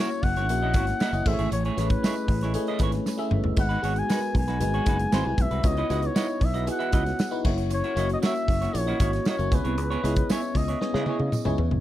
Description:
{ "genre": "polished 1980s jazz-funk pop", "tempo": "116 BPM", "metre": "4/4", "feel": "straight", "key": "C# minor", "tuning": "A4 = 440 Hz", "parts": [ { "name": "breathy flugelhorn", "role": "melody", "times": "0.0-11.6 s", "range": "B4 to G#5", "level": "-30 LUFS", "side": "left 2 dB", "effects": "none" }, { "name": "FM electric piano", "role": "accompaniment", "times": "0.0-11.8 s", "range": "G#3 to E5", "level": "-29 LUFS", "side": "left 1 dB", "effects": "wide subtle chorus" }, { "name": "semi-hollow electric guitar", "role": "riff", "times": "0.0-11.8 s", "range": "G#3 to E5", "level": "-33 LUFS", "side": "right 5 dB", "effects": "wide subtle chorus" }, { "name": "sustaining fretless electric bass", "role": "bass", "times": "0.2-11.8 s", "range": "F#1 to C#3", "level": "-27 LUFS", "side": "equal", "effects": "wide subtle chorus" }, { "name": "modern studio drum kit", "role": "drums", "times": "0.2-11.8 s", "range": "crash cymbal, hi-hat, kick drum, snare drum, splash cymbal, toms", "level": "-26 LUFS", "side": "equal", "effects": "none" }, { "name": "tambourine", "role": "percussion", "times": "1.0-11.5 s", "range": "none", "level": "-43 LUFS", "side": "right 11 dB", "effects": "none" } ], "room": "small room ambience", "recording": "dry, close 1970s-style studio recording", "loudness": "-22 LUFS", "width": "side -13 dB against mid", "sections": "0.0-11.8 A section", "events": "drum fill 3.1-3.6, 10.8-11.8", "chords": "0.0 F#7; 1.3 Amaj7; 3.6 G#m7; 5.1 G#7alt; 5.6 C#m11; 7.5 F#7; 9.5 C#m7" }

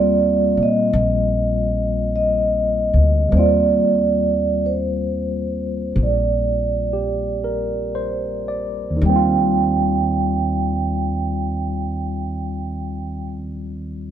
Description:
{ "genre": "jazz ballad", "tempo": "36-53 BPM", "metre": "4/4", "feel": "swing 68% on 8ths", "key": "Eb major", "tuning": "A4 = 440 Hz", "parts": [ { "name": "vibraphone with soft mallets", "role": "melody", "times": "0.0-13.3 s", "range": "C5 to G5", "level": "-21 LUFS", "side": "right 3 dB", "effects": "none" }, { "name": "barky tine electric piano", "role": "accompaniment", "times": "0.0-14.1 s", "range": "Eb2 to D5", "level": "-22 LUFS", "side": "left 1 dB", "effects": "medium stereo tremolo" }, { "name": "upright bass", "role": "bass", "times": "0.0-13.3 s", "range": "Bb1 to Bb2", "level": "-23 LUFS", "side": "left 1 dB", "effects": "none" } ], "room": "moderate stone room reverb, RT60 1.0 s", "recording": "band playing live in one room", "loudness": "-17 LUFS", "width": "side -10 dB against mid", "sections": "0.0-9.0 A section; 9.0-14.1 B section", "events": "slowing down 0.0-9.0", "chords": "0.0 Eb69" }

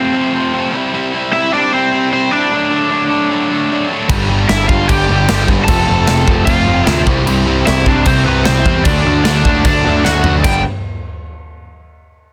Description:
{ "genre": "punk rock", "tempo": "151 BPM", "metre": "4/4", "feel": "straight", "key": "G mixolydian", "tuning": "A4 = 440 Hz", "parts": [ { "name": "crunchy overdriven guitar", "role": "melody", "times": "0.0-10.6 s", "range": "B3 to A5", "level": "-18 LUFS", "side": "equal", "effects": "none" }, { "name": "distorted electric guitar", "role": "riff", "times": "0.0-10.6 s", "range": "F2 to E4", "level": "-21 LUFS", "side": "equal", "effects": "distortion" }, { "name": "crunchy overdriven guitar", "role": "riff", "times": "4.1-10.6 s", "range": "F2 to D4", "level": "-20 LUFS", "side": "equal", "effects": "none" }, { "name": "raw garage guitar", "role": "riff", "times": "4.1-10.6 s", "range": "G2 to G4", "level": "-24 LUFS", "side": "equal", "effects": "overdrive" }, { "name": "growling picked electric bass", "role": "bass", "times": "4.1-10.6 s", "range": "F1 to E2", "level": "-19 LUFS", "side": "equal", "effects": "overdrive" }, { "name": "big rock drum kit", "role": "drums", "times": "4.1-10.5 s", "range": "crash cymbal, kick drum, snare drum, toms", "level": "-18 LUFS", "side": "equal", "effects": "none" } ], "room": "little or no reverb", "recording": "dense, heavily limited modern master", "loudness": "-13 LUFS", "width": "mono", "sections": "0.0-10.4 A section; 10.4-12.0 B section", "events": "drum fill 10.0-10.4", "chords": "0.0 F; 0.7 C; 2.5 D; 4.1 G; 5.7 F; 7.1 C; 8.9 D; 10.4 G" }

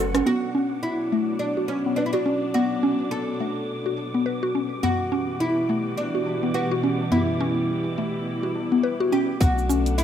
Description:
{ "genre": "organic downtempo", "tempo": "105 BPM", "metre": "4/4", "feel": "swing 58% on 16ths", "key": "B minor", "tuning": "A4 = 440 Hz", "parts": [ { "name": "dark studio string section", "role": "sustained chords", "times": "0.0-10.0 s", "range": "B2 to A4", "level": "-29 LUFS", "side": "equal", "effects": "sidechain pumping" }, { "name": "mallet-like synth pluck", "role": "arpeggios", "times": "0.0-9.9 s", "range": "A3 to B4", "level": "-24 LUFS", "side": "left 1 dB", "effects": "chorus, phaser, vintage 12-bit sampler grit, digital delay" }, { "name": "warm sub bass", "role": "bass", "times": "0.0-0.2, 9.4-10.0 s", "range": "F#1 to B1", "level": "-25 LUFS", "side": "equal", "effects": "none" }, { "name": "wind-like tuned noise texture", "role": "texture", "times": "0.0-10.0 s", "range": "F#5 to D6", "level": "-38 LUFS", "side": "right 1 dB", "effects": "built-in reverb" }, { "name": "deep house drum kit", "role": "drums", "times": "0.1-0.2, 9.4-10.0 s", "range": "cabasa, hi-hat, rim click", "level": "-29 LUFS", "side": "left 1 dB", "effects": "low-pass filter on hats, low-pass filter on perc, low-pass filter on snare, low-pass filter on room" }, { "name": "oud", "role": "melody", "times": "0.3-10.0 s", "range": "C#4 to A4", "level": "-28 LUFS", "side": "equal", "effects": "tape echo" }, { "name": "tabla", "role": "percussion", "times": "4.8-9.3 s", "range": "none", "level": "-33 LUFS", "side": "left 1 dB", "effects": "none" }, { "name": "electronic kick drum", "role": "drums", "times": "9.4-9.5 s", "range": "none", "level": "-19 LUFS", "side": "equal", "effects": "none" } ], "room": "light reverb", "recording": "rough home demo mix", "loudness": "-22 LUFS", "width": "side -9 dB against mid", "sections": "0.3-9.4 A section", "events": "drum fill 0.0; filter sweep on synth pluck 0.3-9.4", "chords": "0.3 Bm7; 4.8 Em7/B; 9.4 Bm7" }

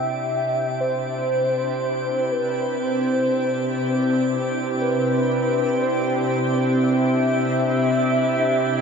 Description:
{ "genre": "ambient", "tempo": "60 BPM", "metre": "4/4", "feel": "straight", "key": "C major", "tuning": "A4 = 436 Hz", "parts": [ { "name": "warm velvety synth lead", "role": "melody", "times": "0.0-8.8 s", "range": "B4 to E5", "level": "-23 LUFS", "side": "equal", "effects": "chorus, diffuse ambient delay" }, { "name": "shimmering ambient pad", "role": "sustained chords", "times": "0.0-8.8 s", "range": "C3 to G4", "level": "-27 LUFS", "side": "equal", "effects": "chorus, built-in reverb" }, { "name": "analog drone", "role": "drone", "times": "0.0-8.8 s", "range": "C3 to C4", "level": "-23 LUFS", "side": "equal", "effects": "chorus" }, { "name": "drifting glass-harmonics texture", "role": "texture", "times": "0.0-8.8 s", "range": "G4 to G5", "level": "-31 LUFS", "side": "equal", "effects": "chorus, built-in reverb" } ], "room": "wet huge ambient reverb, RT60 8.9 s", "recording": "none", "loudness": "-19 LUFS", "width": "side -6 dB against mid", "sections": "0.0-8.8 A section", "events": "none", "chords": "0.0 Cadd9" }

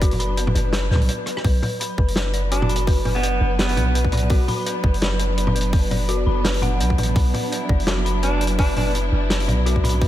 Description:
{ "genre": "half-time drum and bass", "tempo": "168 BPM", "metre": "4/4", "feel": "swing 57% on 16ths, half-time", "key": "B minor", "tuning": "A4 = 439 Hz", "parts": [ { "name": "warm symphonic string section", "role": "sustained chords", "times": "0.0-10.1 s", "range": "F#3 to B4", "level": "-29 LUFS", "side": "right 2 dB", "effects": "sidechain pumping" }, { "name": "dark detuned synth bell", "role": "arpeggios", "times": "0.0-10.1 s", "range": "F#4 to B5", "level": "-27 LUFS", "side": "left 4 dB", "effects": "chorus, vintage 12-bit sampler grit, tape echo" }, { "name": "long sustained 808-style bass", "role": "bass", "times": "0.0-10.1 s", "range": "F#1 to D2", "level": "-21 LUFS", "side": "equal", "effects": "none" }, { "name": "electronic kick drum", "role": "drums", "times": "0.0-10.1 s", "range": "none", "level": "-19 LUFS", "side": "equal", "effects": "overdrive" }, { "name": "warm soul drum kit", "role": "drums", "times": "0.0-10.1 s", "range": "hi-hat, rim click, snare drum, toms", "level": "-25 LUFS", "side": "equal", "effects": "none" }, { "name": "growling alto saxophone", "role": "melody", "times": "2.5-4.1, 8.2-8.9 s", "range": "B3 to D4", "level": "-27 LUFS", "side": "right 2 dB", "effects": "diffuse ambient delay" } ], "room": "light reverb, studio ambience", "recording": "none", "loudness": "-18 LUFS", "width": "side -13 dB against mid", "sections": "0.0-1.4 A section; 1.4-10.1 A section", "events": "drop 0.0-1.4, 1.4-10.1; break 1.1-1.4; drum fill 1.3", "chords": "0.0 Bm" }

